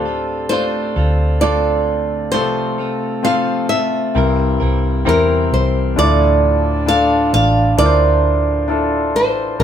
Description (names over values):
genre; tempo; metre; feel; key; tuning
pop ballad; 66 BPM; 4/4; straight; unclear; A4 = 440 Hz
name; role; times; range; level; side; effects
flamenco guitar; melody; 0.0-9.6 s; Bb4 to F5; -18 LUFS; right 2 dB; none
warm concert grand piano; accompaniment; 0.0-9.6 s; G2 to C5; -19 LUFS; left 4 dB; none
direct-recorded clean electric guitar; arpeggios; 0.0-6.5 s; C3 to Bb4; -24 LUFS; right 5 dB; none
vintage muted fingered electric bass; bass; 0.0-9.6 s; A1 to E2; -18 LUFS; equal; none
mellow French horn section; second line; 6.0-9.6 s; A2 to D4; -22 LUFS; right 2 dB; none
room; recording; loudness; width
wet studio reverb, RT60 0.8 s; band playing live in one room; -13 LUFS; side -9 dB against mid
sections
0.0-6.0 A section; 6.0-9.6 B section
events
none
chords
0.0 Dm7; 2.3 F/C; 4.1 C7; 6.0 Dmadd9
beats
0.51 1.42 | 2.33 3.24 4.15 5.06 | 5.96 6.87 7.78 8.69 | 9.60